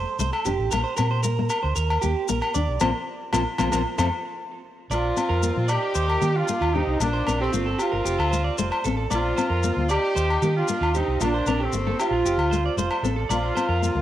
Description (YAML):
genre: highlife guitar band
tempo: 114 BPM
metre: 4/4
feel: straight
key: Bb major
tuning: A4 = 439 Hz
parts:
  - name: nylon-string guitar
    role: accompaniment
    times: 0.0-14.0 s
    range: F3 to D4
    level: -29 LUFS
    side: left 5 dB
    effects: cassette tape
  - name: electric guitar at the edge of break-up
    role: arpeggios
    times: 0.0-13.9 s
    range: F4 to D5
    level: -28 LUFS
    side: right 7 dB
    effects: vibrato effect, cassette tape, tape echo
  - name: hollow-body short-scale fingered electric bass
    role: bass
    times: 0.0-14.0 s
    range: F1 to Eb3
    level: -26 LUFS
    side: equal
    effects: none
  - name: maracas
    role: percussion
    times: 0.2-14.0 s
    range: none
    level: -35 LUFS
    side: left 8 dB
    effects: none
  - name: agogo bells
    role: percussion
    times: 0.3-13.7 s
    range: none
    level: -29 LUFS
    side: left 3 dB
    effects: none
  - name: bright horn section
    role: melody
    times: 4.9-14.0 s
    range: C4 to G4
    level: -26 LUFS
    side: right 1 dB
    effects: cassette tape, tape echo
  - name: edgy tenor saxophone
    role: second line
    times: 4.9-14.0 s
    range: A3 to Eb4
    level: -36 LUFS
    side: left 7 dB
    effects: cassette tape
room: light reverb, studio reverb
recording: home recording on cassette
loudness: -21 LUFS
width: side -12 dB against mid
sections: 0.0-4.9 A section; 4.9-14.0 B section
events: band accent 2.8-4.9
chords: 0.0 F; 0.7 Bbsus2; 1.8 Eb; 2.8 Bbsus2; 3.9 F; 4.9 Bbsus2; 6.0 Ebadd9; 7.0 Bbsus2; 8.1 F; 9.1 Bbsus2; 10.2 Ebadd9; 11.2 Bbsus2; 12.2 F; 13.3 Bbsus2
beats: 0.19 | 0.72 1.24 1.76 2.29 | 2.81 3.34 3.86 4.38 | 4.91 5.43 5.96 6.48 | 7.01 7.53 8.06 8.58 | 9.10 9.63 10.15 10.68 | 11.20 11.72 12.25 12.77 | 13.30 13.82